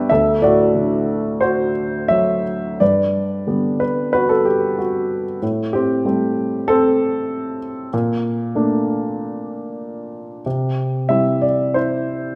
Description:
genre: classical, lyrical solo piano.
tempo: 81-98 BPM.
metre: 4/4.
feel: rubato.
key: unclear.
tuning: A4 = 440 Hz.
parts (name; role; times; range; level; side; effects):
dark grand piano; solo; 0.0-12.4 s; D2 to G5; -19 LUFS; equal; none.
room: wet recital hall reverb, RT60 1.4 s.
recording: recorded in a church or concert hall.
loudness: -19 LUFS.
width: mono.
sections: 0.0-2.8 A section; 2.8-12.4 B section.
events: none.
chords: 0.1 D7; 2.8 Gmaj7; 5.4 Am7; 7.9 Bbmaj7; 10.5 C.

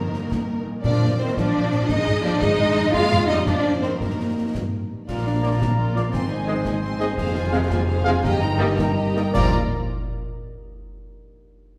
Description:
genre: cinematic, heroic adventure film score.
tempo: 114 BPM (dotted quarters).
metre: 6/8.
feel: straight.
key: Bb mixolydian.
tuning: A4 = 440 Hz.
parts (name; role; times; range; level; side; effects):
warm symphonic violin section; melody; 0.0-9.6 s; Bb4 to C6; -35 LUFS; equal; none.
warm symphonic violin section; second line; 0.0-9.5 s; Ab4 to G5; -34 LUFS; equal; none.
warm symphonic viola section; accompaniment; 0.0-9.6 s; Eb3 to Ab4; -30 LUFS; equal; none.
concert harp; arpeggios; 0.0-9.6 s; F2 to Eb6; -34 LUFS; equal; none.
dark symphonic cello section; bass; 0.0-9.6 s; F2 to F4; -28 LUFS; equal; none.
rich symphonic double bass section; bass; 0.0-9.6 s; F1 to G2; -28 LUFS; equal; none.
concert snare drum, concert bass drum and clash cymbals; drums; 0.1-9.6 s; none; -32 LUFS; equal; none.
timpani; percussion; 0.8-1.3, 9.3-9.5 s; Bb2; -32 LUFS; equal; none.
clear clarinet; second line; 5.1-9.5 s; C5 to Eb5; -37 LUFS; equal; none.
silver concert flute; second line; 5.1-9.5 s; Ab5 to Bb5; -36 LUFS; equal; none.
bright trombone section; sustained chords; 5.4-9.5 s; Bb2 to Bb3; -36 LUFS; equal; none.
dark trumpet; stabs; 5.4-9.5 s; D5 to F5; -32 LUFS; equal; none.
mellow French horn section; sustained chords; 5.5-9.5 s; Bb3 to Bb4; -33 LUFS; equal; none.
room: wet recital hall reverb, RT60 1.6 s.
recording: recorded in a church or concert hall.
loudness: -22 LUFS.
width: mono.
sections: 0.0-5.1 A section; 5.1-9.3 B section; 9.3-10.5 C section.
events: slowing down 6.7-9.3.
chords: 0.0 Eb/G; 0.8 Bb; 1.9 Ab; 2.9 Fm; 4.0 Eb/G; 5.1 Bb; 6.1 Ab; 7.2 Fm; 8.2 Eb/G; 9.3 Bb.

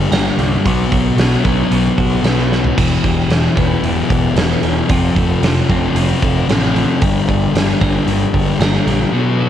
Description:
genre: quiet-loud alternative rock.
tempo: 113 BPM.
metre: 4/4.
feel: straight.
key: unclear.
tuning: A4 = 440 Hz.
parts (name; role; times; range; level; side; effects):
twelve-string electric guitar; arpeggios; 0.0-9.5 s; G2 to C4; -22 LUFS; right 9 dB; cassette tape.
thick fuzz guitar; riff; 0.0-9.5 s; E2 to B3; -16 LUFS; left 5 dB; distortion, cassette tape.
growling picked electric bass; bass; 0.0-9.0 s; E1 to C2; -19 LUFS; right 2 dB; overdrive.
huge arena drum kit; drums; 0.1-9.0 s; crash cymbal, hi-hat, kick drum, snare drum, toms; -18 LUFS; right 2 dB; cassette tape.
room: studio reverb.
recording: home recording on cassette.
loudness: -12 LUFS.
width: side -10 dB against mid.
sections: 0.0-9.5 A section.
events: drum fill 2.5.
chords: 0.0 Gm; 0.7 B5; 2.8 Em; 4.9 F; 7.0 Gm.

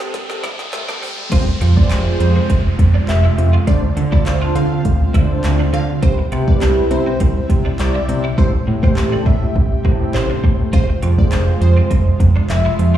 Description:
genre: dance-pop.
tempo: 102 BPM.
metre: 4/4.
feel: straight.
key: unclear.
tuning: A4 = 439 Hz.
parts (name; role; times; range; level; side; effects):
mellow synth brass; accompaniment; 0.0-11.8 s; C4 to C5; -23 LUFS; right 1 dB; chorus, sidechain pumping.
airy breathy pad; sustained chords; 0.0-13.0 s; C3 to A4; -24 LUFS; equal; chorus, sidechain pumping.
wide unison pluck; arpeggios; 0.0-1.3 s; G3 to A5; -34 LUFS; left 1 dB; sidechain pumping, tape echo.
deep house drum kit; drums; 0.0-12.9 s; crash cymbal, handclaps, hi-hat, kick drum, snare drum; -16 LUFS; equal; none.
riser and downlifter; sound effects; 0.0-6.0 s; none; -30 LUFS; equal; none.
twelve-string electric guitar; riff; 0.4-13.0 s; A3 to F4; -30 LUFS; right 2 dB; ensemble chorus.
group handclap; percussion; 0.7-12.6 s; none; -37 LUFS; left 2 dB; none.
plucky unison lead; melody; 1.3-12.9 s; C5 to F5; -26 LUFS; left 2 dB; tape echo.
fat analog bass; bass; 1.3-13.0 s; F1 to D3; -16 LUFS; right 1 dB; sidechain pumping.
room: little or no reverb.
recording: played on a big sound system in a bare room, large studio reverb, high-pass filter, small room ambience.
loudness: -13 LUFS.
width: side -11 dB against mid.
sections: 0.0-1.3 A section; 1.3-13.0 B section.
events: build-up 0.0-1.3; drum fill 0.0-1.3; riser 0.0-1.3; filter sweep 0.0-1.3; drop 1.3-13.0; hi-hats muted 8.4-10.7.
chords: 0.0 Am7; 1.3 Fm; 3.7 Dm7; 6.0 Cmaj7; 8.4 Am7; 10.7 Fm.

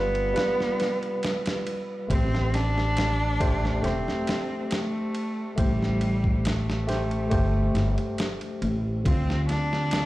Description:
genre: trip hop.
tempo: 69 BPM.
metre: 4/4.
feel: straight.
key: A minor.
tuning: A4 = 439 Hz.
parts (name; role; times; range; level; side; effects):
rich cello; melody; 0.0-10.1 s; G3 to D4; -30 LUFS; equal; dub echo.
tine electric piano; accompaniment; 0.0-10.1 s; D3 to C5; -29 LUFS; equal; tremolo, tape echo.
upright bass; bass; 0.0-10.1 s; E1 to D2; -26 LUFS; equal; tube saturation.
dusty soul sampler-style drum kit; drums; 0.1-10.1 s; kick drum, ride cymbal, snare drum; -29 LUFS; equal; none.
room: studio reverb.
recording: played on a big sound system in a bare room, large studio reverb.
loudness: -23 LUFS.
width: side -17 dB against mid.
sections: 0.0-2.1 A section; 2.1-10.1 B section.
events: break 0.4-2.1.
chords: 0.0 G7; 2.1 Am7; 9.1 Dm7.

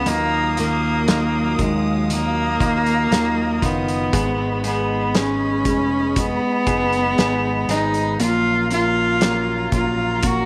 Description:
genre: pop ballad.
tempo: 59 BPM.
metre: 4/4.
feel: straight.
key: unclear.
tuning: A4 = 440 Hz.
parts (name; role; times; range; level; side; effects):
rich cello; melody; 0.0-10.5 s; G#3 to F#4; -22 LUFS; equal; slapback echo.
felt-muted upright piano; accompaniment; 0.0-10.5 s; D#3 to A#3; -29 LUFS; equal; none.
dark studio string section; sustained chords; 0.0-10.5 s; F#3 to D#6; -33 LUFS; equal; none.
direct-recorded clean electric guitar; arpeggios; 0.0-10.5 s; G#2 to G#4; -31 LUFS; equal; none.
fingered electric bass; bass; 0.0-10.5 s; E#1 to D#2; -29 LUFS; equal; none.
loose indie drum kit; drums; 0.1-10.5 s; hi-hat, kick drum, snare drum; -26 LUFS; equal; none.
room: light reverb, small room reverb.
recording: none.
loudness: -20 LUFS.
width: mono.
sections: 0.0-10.5 A section.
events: none.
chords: 0.1 D#madd9; 4.1 G#m; 8.2 F#maj7/A#.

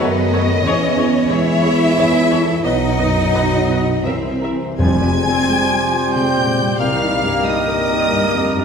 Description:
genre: cinematic, emotional film score for orchestra.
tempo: 76-92 BPM.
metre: 3/4.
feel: rubato.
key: C# minor, F minor from 4.8 s.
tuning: A4 = 443 Hz.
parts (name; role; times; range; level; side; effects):
rich studio violin section; melody; 0.0-8.6 s; G#4 to Ab6; -24 LUFS; left 3 dB; none.
rich studio violin section; second line; 0.0-8.6 s; B4 to Ab5; -23 LUFS; left 2 dB; none.
dark studio viola section; accompaniment; 0.0-8.6 s; C3 to E5; -25 LUFS; right 1 dB; none.
felt-muted upright piano; accompaniment; 0.0-8.6 s; B1 to C#5; -22 LUFS; left 1 dB; none.
mellow French horn section; sustained chords; 0.0-8.6 s; D#3 to C4; -23 LUFS; left 2 dB; none.
warm studio cello section; bass; 0.0-7.3 s; C2 to E4; -22 LUFS; right 2 dB; none.
warm studio double bass section; bass; 0.0-7.3 s; F1 to F#2; -21 LUFS; right 3 dB; none.
hollow concert flute; second line; 4.8-8.6 s; Eb5 to Ab5; -24 LUFS; left 1 dB; none.
mellow clarinet; second line; 4.8-8.6 s; G4; -28 LUFS; equal; none.
warm oboe; second line; 4.8-8.6 s; Bb4 to C5; -24 LUFS; right 4 dB; none.
timpani; percussion; 4.8-5.8 s; F2; -21 LUFS; left 1 dB; none.
room: wet recital hall reverb, RT60 1.3 s.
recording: recorded in a church or concert hall.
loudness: -14 LUFS.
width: side -6 dB against mid.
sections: 0.0-4.8 A section; 4.8-8.6 B section.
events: none.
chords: 0.0 F#madd9; 0.6 C#m/E; 2.6 B; 4.0 C7; 4.8 Fmadd9; 6.8 Cm7.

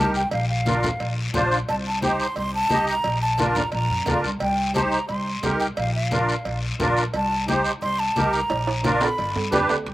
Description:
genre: latin, cumbia.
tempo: 176 BPM.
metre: 4/4.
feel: straight.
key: C dorian.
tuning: A4 = 444 Hz.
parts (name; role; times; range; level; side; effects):
breathy hollow jazz flute; melody; 0.0-9.7 s; F5 to C6; -25 LUFS; equal; none.
musette accordion; accompaniment; 0.0-9.8 s; D4 to Eb5; -24 LUFS; right 1 dB; slapback echo.
upright bass; bass; 0.0-9.9 s; G1 to G2; -27 LUFS; equal; none.
guiro; percussion; 0.1-9.9 s; none; -33 LUFS; left 4 dB; none.
congas; percussion; 0.3-9.9 s; none; -28 LUFS; left 2 dB; none.
cowbell and timbales; percussion; 0.3-9.9 s; none; -31 LUFS; right 4 dB; slapback echo.
room: little or no reverb.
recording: recorded outdoors, with no room sound.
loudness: -20 LUFS.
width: side -16 dB against mid.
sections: 0.0-9.9 A section.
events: drum fill 8.5-9.9.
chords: 0.3 Bb; 1.7 Cm; 3.0 Bb; 4.4 Cm; 5.8 Bb; 7.1 Cm; 8.5 Bb; 9.2 G7.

